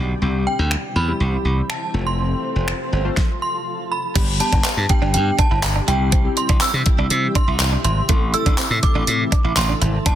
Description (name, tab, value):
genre	dance-pop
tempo	122 BPM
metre	4/4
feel	straight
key	C major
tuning	A4 = 442 Hz
part	shimmering ambient pad	sustained chords	0.0-10.2 s	B2 to A4	-31 LUFS	equal	chorus, built-in reverb, sidechain pumping
part	glassy slap bass	bass	0.0-10.2 s	F1 to C3	-20 LUFS	equal	sidechain pumping
part	glassy digital keys	accompaniment	0.2-10.1 s	G3 to C5	-28 LUFS	left 4 dB	chorus, sidechain pumping
part	swell	sound effects	1.1-3.2 s	none	-32 LUFS	right 2 dB	none
part	synth chime	melody	0.5-10.2 s	G5 to E6	-24 LUFS	right 2 dB	ensemble chorus, tremolo, tape echo
part	pop drum kit	drums	0.7-10.2 s	crash cymbal, finger snaps, handclaps, hi-hat, kick drum, snare drum	-18 LUFS	equal	overdrive, soft clipping on snare
part	direct-recorded clean electric guitar	riff	4.2-10.1 s	G3 to E4	-29 LUFS	right 9 dB	analog chorus
part	tambourine	percussion	4.6-9.7 s	none	-30 LUFS	left 9 dB	none
room	digital ambience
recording	dense, heavily limited modern master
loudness	-16 LUFS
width	side -11 dB against mid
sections	0.0-4.2 A section; 4.2-10.2 B section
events	swell 1.1-4.2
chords	0.2 C; 1.9 F; 4.2 G; 5.9 C; 8.1 Am